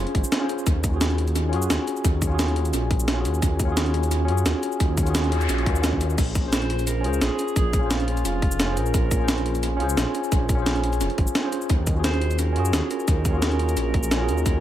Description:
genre	liquid drum and bass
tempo	174 BPM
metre	4/4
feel	swing 53% on 16ths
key	unclear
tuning	A4 = 439 Hz
part	tine electric piano	accompaniment	0.0-14.6 s	Db4 to C5	-27 LUFS	equal	medium stereo tremolo, dub echo
part	dark detuned saw bass	bass	0.0-14.6 s	F1 to Gb2	-24 LUFS	equal	tube saturation
part	breakbeat sampler-style drum kit	drums	0.1-14.5 s	crash cymbal, hi-hat, shaker, snare drum	-26 LUFS	equal	studio ambience, tape echo
part	electronic kick drum	drums	0.1-14.5 s	none	-22 LUFS	equal	overdrive, studio ambience
part	noise sweep	sound effects	5.0-6.2 s	none	-33 LUFS	left 1 dB	none
part	warm alto saxophone	melody	6.5-9.8, 12.0-14.6 s	F4 to C5	-32 LUFS	right 4 dB	dub echo
room	light reverb, digital ambience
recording	echo-heavy mix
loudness	-20 LUFS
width	side -12 dB against mid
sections	0.0-14.6 A section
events	noise sweep 5.0-6.2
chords	0.0 Bbm7 (rootless); 0.7 Ebm11; 6.2 Bbm7; 11.7 Ebm11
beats	0.32 | 0.67 1.01 1.35 1.70 | 2.04 2.39 2.73 3.08 | 3.42 3.77 4.11 4.46 | 4.80 5.15 5.49 5.84 | 6.18 6.53 6.87 7.22 | 7.56 7.91 8.25 8.60 | 8.94 9.29 9.63 9.97 | 10.32 10.66 11.01 11.35 | 11.70 12.04 12.39 12.73 | 13.08 13.42 13.77 14.11 | 14.46

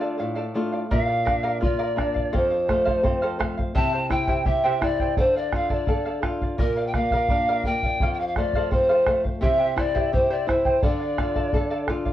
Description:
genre	andean folk, Andean ensemble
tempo	85 BPM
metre	2/4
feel	straight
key	D minor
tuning	A4 = 440 Hz
part	polished pan flute	melody	0.0-11.9 s	Bb4 to A5	-23 LUFS	equal	none
part	charango	accompaniment	0.0-12.1 s	E4 to G5	-29 LUFS	right 1 dB	none
part	flamenco guitar	accompaniment	0.0-12.1 s	F2 to A4	-28 LUFS	left 1 dB	none
part	bombo	percussion	0.9-12.1 s	none	-26 LUFS	equal	none
room	moderate studio reverb, RT60 0.5 s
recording	worn, warbling old tape, cassette tape, warbly pitch drift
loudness	-20 LUFS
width	side -12 dB against mid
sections	0.9-12.1 A section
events	none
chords	0.0 Dm; 0.9 Bb; 2.3 F; 3.7 C; 5.2 Dm; 6.6 Bb; 8.0 F; 9.4 C; 10.8 Dm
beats	0.20 | 0.91 1.61 | 2.32 3.03 | 3.74 4.45 | 5.16 5.87 | 6.57 7.28 | 7.99 8.70 | 9.41 10.12 | 10.83 11.54

